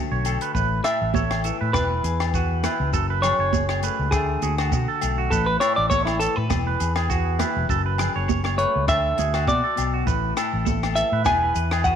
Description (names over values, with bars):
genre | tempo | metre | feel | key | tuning
highlife guitar band | 101 BPM | 4/4 | swing 55% on 16ths | A major | A4 = 442 Hz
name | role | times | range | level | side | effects
clean electric guitar | accompaniment | 0.0-12.0 s | F#2 to C#5 | -31 LUFS | left 12 dB | none
clean electric guitar | arpeggios | 0.1-12.0 s | A3 to C#5 | -28 LUFS | right 9 dB | slapback echo
fingered electric bass | bass | 0.1-12.0 s | E1 to B2 | -25 LUFS | equal | none
compact cocktail drum kit | drums | 0.2-12.0 s | hi-hat, kick drum, rim click | -29 LUFS | left 1 dB | none
congas | percussion | 0.2-11.6 s | none | -31 LUFS | right 13 dB | none
agogo bells | percussion | 0.3-11.9 s | none | -32 LUFS | left 14 dB | none
shekere | percussion | 0.3-12.0 s | none | -34 LUFS | right 6 dB | none
semi-hollow electric guitar | melody | 0.8-12.0 s | E4 to G#5 | -23 LUFS | equal | none
room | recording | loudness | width
moderate echo chamber reverb, RT60 1.6 s, small room ambience | 1960s-style stereo with parts hard left and right | -20 LUFS | side -8 dB against mid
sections
0.5-12.0 A section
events
clean electric guitar solo 0.5-12.0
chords
0.0 D; 0.5 A; 1.7 Eadd9; 2.9 F#madd9; 4.1 D; 5.3 A; 6.5 Eadd9; 7.7 F#madd9; 8.9 D; 10.1 A5; 11.3 Eadd9